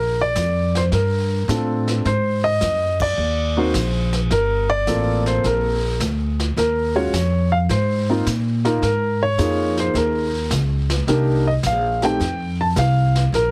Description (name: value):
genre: jazz piano trio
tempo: 106 BPM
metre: 4/4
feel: swing 69% on 8ths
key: Bb major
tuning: A4 = 440 Hz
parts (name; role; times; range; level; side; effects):
- warm grand piano; melody; 0.0-13.5 s; Ab3 to A5; -22 LUFS; equal; none
- upright bass; bass; 0.0-13.5 s; G1 to Bb2; -23 LUFS; equal; none
- vintage brush drum kit; drums; 0.4-13.5 s; brushed snare drum, hi-hat, kick drum, ride cymbal, snare drum; -32 LUFS; equal; none
room: little or no reverb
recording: heavily compressed radio sound, multiband compression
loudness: -20 LUFS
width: mono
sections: 0.0-13.5 A section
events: band accent 2.9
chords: 0.0 Bbmaj9; 2.1 Ab9; 4.3 Gm11; 6.6 Eb7sus2; 7.7 Ab; 8.8 Db69; 11.1 Cm7; 12.2 F5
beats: 0.37 0.93 1.49 | 2.06 2.62 3.19 3.75 | 4.31 4.88 5.44 6.00 | 6.57 7.13 7.70 8.26 | 8.82 9.39 9.95 10.51 | 11.07 11.64 12.20 12.76 | 13.33